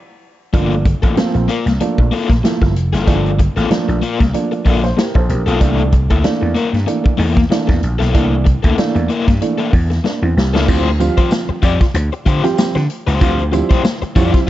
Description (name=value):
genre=funk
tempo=95 BPM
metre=4/4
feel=swing 56% on 16ths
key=unclear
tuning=A4 = 440 Hz
part: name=crunchy overdriven guitar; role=accompaniment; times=0.5-14.5 s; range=Bb3 to D5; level=-20 LUFS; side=left 6 dB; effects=tremolo
part: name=dark upright piano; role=stabs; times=0.5-14.5 s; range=E3 to D5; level=-20 LUFS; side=right 4 dB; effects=slapback echo
part: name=vintage slap bass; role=bass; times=0.5-14.3 s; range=F1 to D3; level=-16 LUFS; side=equal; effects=none
part: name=vintage drum kit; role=drums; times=0.5-14.5 s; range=crash cymbal, hi-hat, kick drum, snare drum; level=-16 LUFS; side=equal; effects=none
part: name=tambourine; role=percussion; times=10.7-14.3 s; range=none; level=-38 LUFS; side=left 3 dB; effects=none
room=light reverb, small room ambience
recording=dark, warm production, nothing above 7.8 kHz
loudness=-13 LUFS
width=side -14 dB against mid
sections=0.5-10.7 A section; 10.7-14.5 B section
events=upright piano fill 0.0-0.5, 4.3-5.6; band accent 0.0-0.5; drum fill 10.0-10.7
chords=0.0 N.C.; 0.5 Gm9; 5.6 C13; 10.7 Dm11